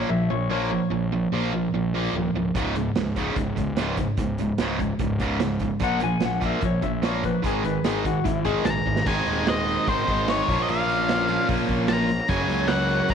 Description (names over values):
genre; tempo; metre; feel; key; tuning
classic rock; 148 BPM; 4/4; straight; unclear; A4 = 440 Hz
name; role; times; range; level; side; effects
clean lap steel guitar; second line; 0.0-1.7, 5.8-8.8 s; Fb4 to Ab5; -29 LUFS; left 10 dB; none
cranked stack guitar; riff; 0.0-13.1 s; Db2 to Bb4; -29 LUFS; left 10 dB; overdrive, phaser
distorted electric guitar; riff; 0.0-13.1 s; Db2 to Bb3; -26 LUFS; right 7 dB; overdrive
fuzz fingered electric bass; bass; 0.0-13.1 s; Db1 to Db2; -29 LUFS; left 1 dB; overdrive
vintage drum kit; drums; 2.5-13.1 s; crash cymbal, hi-hat, kick drum, snare drum; -29 LUFS; right 2 dB; none
octave-fuzz lead guitar; melody; 8.7-13.1 s; C5 to Bb5; -25 LUFS; left 3 dB; distortion, slapback echo
tonewheel organ; sustained chords; 8.8-13.1 s; Ab3 to D5; -34 LUFS; left 1 dB; slow rotary speaker, overdrive, chorus vibrato
room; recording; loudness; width
moderate echo chamber reverb, RT60 1.4 s, small room ambience; 1960s-style stereo with parts hard left and right; -21 LUFS; side -7 dB against mid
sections
0.0-9.1 A section; 9.1-13.1 B section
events
drum fill 8.9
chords
0.0 Bbm; 2.5 Db5; 5.8 Bb5; 7.4 Ab5; 9.1 Ab; 10.5 Bbm; 12.3 Gb